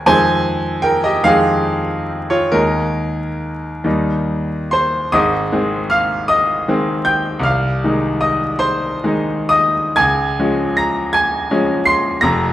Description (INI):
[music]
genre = classical, romantic nocturne for solo piano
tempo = 41-57 BPM (dotted quarters)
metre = 6/8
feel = rubato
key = Ab major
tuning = A4 = 440 Hz
[part]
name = bright grand piano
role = solo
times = 0.0-12.5 s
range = F1 to C7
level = -14 LUFS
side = equal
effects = none
[sound]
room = wet large studio reverb, RT60 1.4 s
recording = vinyl crackle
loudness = -14 LUFS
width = side -13 dB against mid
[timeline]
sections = 0.0-5.1 A section; 5.1-12.5 B section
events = none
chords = 0.1 Fm7; 2.5 Ebsus4; 3.8 Eb; 5.1 Ab; 7.5 Ab/C; 10.0 Db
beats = | 0.08 1.25 | 2.53 3.85 | 5.13 6.30 | 7.45 8.61 | 9.98 11.14 | 12.21